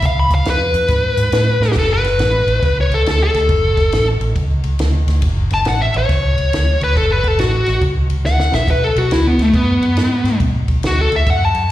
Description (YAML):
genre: electric blues shuffle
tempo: 139 BPM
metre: 4/4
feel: swing 65% on 8ths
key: F# minor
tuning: A4 = 441 Hz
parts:
  - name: smooth overdriven lead guitar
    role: melody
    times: 0.0-11.7 s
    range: A3 to B5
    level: -16 LUFS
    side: left 1 dB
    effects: slapback echo
  - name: vintage muted fingered electric bass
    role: bass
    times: 0.0-11.7 s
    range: F#1 to A2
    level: -16 LUFS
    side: equal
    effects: none
  - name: compact cocktail drum kit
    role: drums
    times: 0.0-11.6 s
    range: crash cymbal, hi-hat, kick drum, ride cymbal, snare drum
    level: -21 LUFS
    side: equal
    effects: slapback echo
room: light reverb, small room ambience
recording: live gig heard through the venue's PA, recital hall reverb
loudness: -13 LUFS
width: side -14 dB against mid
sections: 0.0-1.8 A section; 1.8-11.7 A section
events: lead electric guitar solo 0.0-1.8, 1.8-11.7; drum fill 1.5, 8.2-8.7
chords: 0.0 C#7; 1.8 F#m; 8.7 Bm